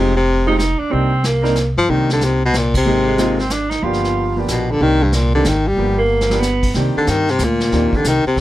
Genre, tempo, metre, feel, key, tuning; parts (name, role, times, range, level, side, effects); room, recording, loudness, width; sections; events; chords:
jazz, small-group swing and bop; 185 BPM; 3/4; swing 64% on 8ths; C minor; A4 = 441 Hz
warm baritone saxophone; melody; 0.0-8.4 s; G2 to G3; -16 LUFS; left 2 dB
clear baby grand piano; accompaniment; 0.0-8.2 s; Eb3 to Bb4; -21 LUFS; right 1 dB
upright bass; bass; 0.0-8.4 s; F1 to G2; -19 LUFS; equal
warm alto saxophone; second line; 0.5-6.7 s; Ab3 to F4; -19 LUFS; right 2 dB
vintage brush drum kit; drums; 0.6-8.4 s; brushed snare drum, crash cymbal, hi-hat, kick drum, ride cymbal, snare drum; -24 LUFS; equal
little or no reverb; -14 LUFS; side -15 dB against mid
0.0-6.7 A section; 6.7-8.4 B section
band accent 2.7; drum fill 6.1-6.4; baritone saxophone solo 6.7-8.4
0.0 Fm7; 0.9 Cm7; 2.9 Abmaj7; 3.8 G7#9; 4.8 Cm7; 5.8 G7#9; 6.7 Cm7